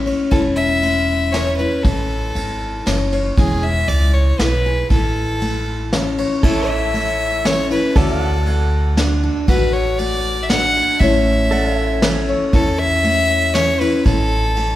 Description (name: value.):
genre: honky-tonk and classic country.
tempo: 118 BPM.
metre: 3/4.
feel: straight.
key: A major.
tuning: A4 = 440 Hz.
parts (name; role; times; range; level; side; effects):
clear fiddle; melody; 0.0-14.8 s; G#4 to F#5; -20 LUFS; equal; none.
picked steel-string acoustic guitar; accompaniment; 0.0-14.8 s; A2 to C#5; -20 LUFS; left 2 dB; none.
upright bass; bass; 0.0-14.8 s; E1 to E2; -21 LUFS; equal; none.
vintage brush drum kit; drums; 0.1-14.7 s; crash cymbal, kick drum, ride cymbal, snare drum; -21 LUFS; equal; none.
pedal steel guitar; sustained chords; 6.4-14.8 s; A4 to F#5; -27 LUFS; right 2 dB; none.
room: wet concert hall reverb, RT60 1.8 s.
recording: recorded in a church or concert hall.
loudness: -15 LUFS.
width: side -14 dB against mid.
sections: 0.0-6.4 A section; 6.4-14.8 A section.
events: none.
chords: 0.0 A; 3.4 E; 4.9 A; 8.0 D; 11.0 A.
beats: | 0.32 0.83 1.34 | 1.85 2.36 2.87 | 3.38 3.88 4.39 | 4.90 5.41 5.92 | 6.43 6.94 7.45 | 7.96 8.46 8.97 | 9.48 9.99 10.50 | 11.01 11.51 12.02 | 12.53 13.04 13.54 | 14.05 14.56.